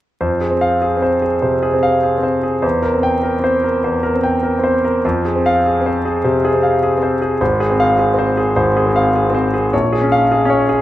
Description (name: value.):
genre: classical, virtuoso piano study.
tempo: 101 BPM.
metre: 4/4.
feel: rubato.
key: F minor.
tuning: A4 = 440 Hz.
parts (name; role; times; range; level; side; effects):
bright concert grand piano; solo; 0.2-10.8 s; Ab1 to G5; -13 LUFS; equal; none.
room: moderate recital hall reverb, RT60 1.6 s.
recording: close, detailed microphones, vinyl crackle.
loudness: -13 LUFS.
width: side -14 dB against mid.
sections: 0.2-10.8 A section.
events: none.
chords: 0.2 Fm; 2.6 C7/E; 5.0 Fm; 7.4 Fm/Ab; 9.7 Bbm7.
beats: | 0.21 0.82 1.43 2.04 | 2.63 3.23 3.83 4.43 | 5.04 5.64 6.24 6.82 | 7.40 7.99 8.57 9.15 | 9.73 10.31.